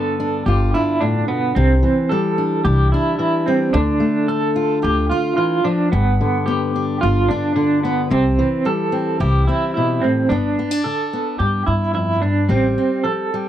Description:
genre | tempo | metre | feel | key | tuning
acoustic folk duo or small band | 110 BPM | 4/4 | straight | unclear | A4 = 442 Hz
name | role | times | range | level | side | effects
fingerpicked steel-string acoustic guitar | accompaniment | 0.0-13.5 s | F2 to F4 | -20 LUFS | left 2 dB | none
electric guitar through a small old amp | arpeggios | 0.0-13.5 s | B3 to A4 | -20 LUFS | right 3 dB | tremolo
upright bass | bass | 0.5-12.8 s | G1 to G2 | -19 LUFS | equal | none
room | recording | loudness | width
light reverb | dry, close 1970s-style studio recording | -16 LUFS | side -11 dB against mid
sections
0.0-10.3 A section; 10.3-13.5 B section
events
none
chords
0.0 G; 1.5 Cadd9; 3.7 Dm; 5.9 G7; 8.1 C; 10.3 Gadd9; 12.5 Fadd9/A

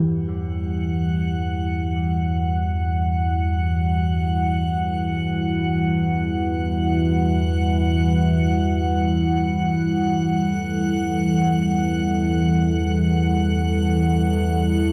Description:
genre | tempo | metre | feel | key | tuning
dark ambient drone | free time | none | none | E minor | A4 = 440 Hz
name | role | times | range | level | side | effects
dark analog pad | sustained chords | 0.0-14.9 s | E3 to F#5 | -26 LUFS | equal | chorus
dark detuned synth bell | arpeggios | 0.0-14.9 s | G4 | -46 LUFS | equal | chorus, analog delay, shimmer reverb
analog drone | drone | 0.0-14.9 s | E2 to E3 | -23 LUFS | equal | chorus
icy glass pad | texture | 0.7-14.9 s | F#5 | -31 LUFS | equal | chorus, built-in reverb, shimmer reverb
room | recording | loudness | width
moderate plate reverb, RT60 3.3 s | dreamy mix soaked in reverb | -21 LUFS | mono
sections
0.1-14.9 A section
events
none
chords
0.1 Emadd9

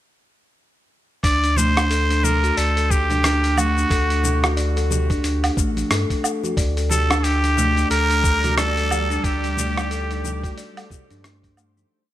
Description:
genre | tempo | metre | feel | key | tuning
organic downtempo | 90 BPM | 4/4 | swing 59% on 16ths | unclear | A4 = 440 Hz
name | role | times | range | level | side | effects
trumpet with straight mute | melody | 1.2-10.6 s | F#4 to D5 | -22 LUFS | right 1 dB | vintage 12-bit sampler grit, digital delay
kalimba | arpeggios | 1.2-11.9 s | A3 to D5 | -25 LUFS | left 2 dB | digital delay
warm sub bass | bass | 1.2-11.8 s | A1 to G2 | -22 LUFS | equal | tube saturation, sidechain pumping
dusty soul sampler-style drum kit | drums | 1.2-11.9 s | hi-hat, rim click, shaker, woodblock | -26 LUFS | equal | studio reverb
electronic kick drum | drums | 1.2-11.5 s | none | -22 LUFS | equal | studio reverb
congas | percussion | 1.6-11.9 s | none | -33 LUFS | right 3 dB | none
granular cloud pad | sustained chords | 7.7-11.9 s | G3 to D5 | -33 LUFS | right 1 dB | built-in reverb, sidechain pumping
room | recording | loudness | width
light reverb | bright 1980s-style digital production | -17 LUFS | side -13 dB against mid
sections
1.2-11.9 groove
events
fade-out 8.4-11.9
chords
1.2 D5; 6.6 Gm/D; 9.2 Ebmaj7/D

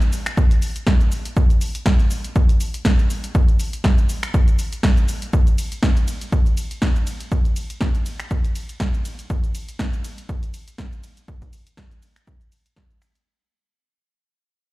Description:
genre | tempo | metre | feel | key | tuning
house | 121 BPM | 4/4 | swing 55% on 16ths | none | none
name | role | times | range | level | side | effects
punchy analog drum machine | drums | 0.0-13.2 s | finger snaps, hi-hat, ride cymbal, shaker, snare drum | -27 LUFS | right 1 dB | sidechain pumping on hats, sidechain pumping on perc, sidechain pumping on cymbals
electronic kick drum | drums | 0.4-12.9 s | none | -18 LUFS | equal | none
room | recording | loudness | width
little or no reverb | played on a big sound system in a bare room, large studio reverb | -18 LUFS | side -19 dB against mid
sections
0.0-13.3 A section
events
drop 0.0-13.3; fade-out 5.3-13.3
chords
none

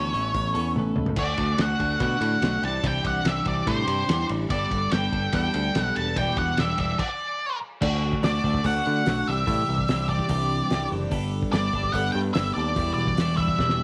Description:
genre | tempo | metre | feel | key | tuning
indie rock | 145 BPM | 4/4 | straight | D major | A4 = 440 Hz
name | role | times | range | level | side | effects
octave-fuzz lead guitar | melody | 0.0-13.8 s | C5 to A5 | -29 LUFS | equal | distortion, slapback echo
twelve-string electric guitar | riff | 0.0-13.8 s | E2 to A4 | -30 LUFS | equal | phaser
picked electric bass | bass | 0.0-13.8 s | E1 to D3 | -31 LUFS | equal | none
cloth-damped thuddy drum kit | drums | 0.1-13.8 s | crash cymbal, hi-hat, kick drum, ride cymbal, snare drum, toms | -32 LUFS | equal | none
room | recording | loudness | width
studio ambience | none | -25 LUFS | mono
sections
0.0-1.2 A section; 1.2-7.8 B section; 7.8-13.8 C section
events
drum fill 0.8-1.2, 13.6; stop 7.0-7.8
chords
0.0 Aadd9; 1.2 D; 2.6 Cadd9; 4.5 Gadd9; 6.2 Em7; 7.8 D; 9.3 Cadd9; 11.1 Gadd9; 12.8 Em7

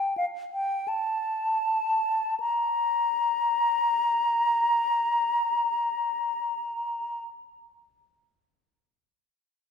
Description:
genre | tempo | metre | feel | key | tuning
classical, baroque-style fantasia for unaccompanied flute | free time | none | none | unclear | A4 = 441 Hz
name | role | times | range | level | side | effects
concert flute | solo | 0.0-7.2 s | F5 to Bb5 | -24 LUFS | left 1 dB | none
room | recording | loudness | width
moderate scoring stage reverb, RT60 1.6 s | heard from further back in the room | -24 LUFS | side -6 dB against mid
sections
0.0-2.4 A section; 2.4-6.9 B section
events
slowing down 0.0-2.4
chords
none

